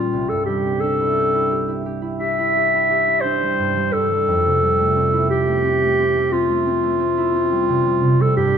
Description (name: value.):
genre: classical, impressionist duo for clarinet and harp.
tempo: 58 BPM (dotted quarters).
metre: 12/8.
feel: rubato.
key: unclear.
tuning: A4 = 440 Hz.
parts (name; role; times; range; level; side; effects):
warm clarinet; melody; 0.0-8.6 s; F4 to E5; -18 LUFS; left 1 dB; none.
concert harp; accompaniment; 0.0-8.6 s; C2 to G4; -22 LUFS; right 2 dB; none.
room: moderate recital hall reverb, RT60 1.4 s.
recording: dark, warm production.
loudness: -16 LUFS.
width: side -7 dB against mid.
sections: 0.0-8.6 A section.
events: none.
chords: 0.1 C69; 4.3 Fmaj9.